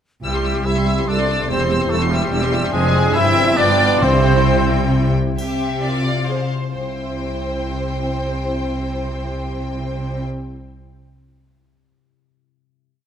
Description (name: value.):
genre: classical, dramatic, fast romantic movement for symphony orchestra.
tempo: 122-147 BPM.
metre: 3/4.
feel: rubato.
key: C major.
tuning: A4 = 445 Hz.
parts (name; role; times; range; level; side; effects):
rich symphonic violin section; melody; 0.2-10.2 s; E5 to E6; -28 LUFS; left 3 dB; none.
bright silver concert flute; second line; 0.2-4.9 s; G4 to E5; -26 LUFS; left 1 dB; none.
clear symphonic violin section; second line; 0.2-10.2 s; G4 to E5; -25 LUFS; left 1 dB; none.
mellow cor anglais; second line; 0.2-4.9 s; G3 to E4; -25 LUFS; right 2 dB; none.
rich symphonic viola section; accompaniment; 0.2-10.2 s; G3 to Ab4; -27 LUFS; right 1 dB; none.
warm French horn section; sustained chords; 0.2-5.1 s; B3 to A4; -27 LUFS; left 4 dB; none.
concert harp; arpeggios; 0.2-11.1 s; E2 to C6; -28 LUFS; left 11 dB; none.
dark trumpet section; stabs; 0.2-4.9 s; G4 to E5; -24 LUFS; right 2 dB; none.
rich studio double bass section; bass; 0.2-10.2 s; E1 to C2; -23 LUFS; right 2 dB; none.
rich symphonic cello section; bass; 0.2-10.2 s; C2 to C3; -23 LUFS; right 1 dB; none.
timpani; percussion; 4.0-4.7 s; C3; -26 LUFS; left 3 dB; none.
triangle; percussion; 5.4-6.2 s; none; -41 LUFS; left 2 dB; none.
room: moderate scoring stage reverb, RT60 1.8 s.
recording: none.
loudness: -16 LUFS.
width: side -8 dB against mid.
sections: 0.2-5.4 A section; 5.4-6.7 coda; 6.7-9.5 final chord.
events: slowing down 3.4-6.7.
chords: 0.2 C; 1.5 C/E; 2.7 Dm7b5/F; 3.1 C/G; 3.6 G7; 4.0 C; 5.4 C7; 6.0 Fm/C; 6.7 C.